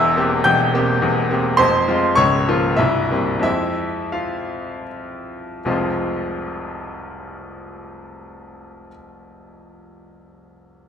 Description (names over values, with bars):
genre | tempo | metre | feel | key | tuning
classical, virtuoso piano study | 75-106 BPM | 3/4 | rubato | F minor | A4 = 440 Hz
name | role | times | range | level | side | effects
clear baby grand piano | solo | 0.0-10.9 s | C1 to G6 | -18 LUFS | left 1 dB | none
room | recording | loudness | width
wet recital hall reverb, RT60 1.6 s | none | -16 LUFS | side -8 dB against mid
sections
0.0-5.7 A section; 5.7-10.4 B section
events
slowing down 0.7-5.7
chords
0.0 C7/E; 1.6 Fm; 2.2 Bbm/Db; 2.8 C7; 3.4 Fm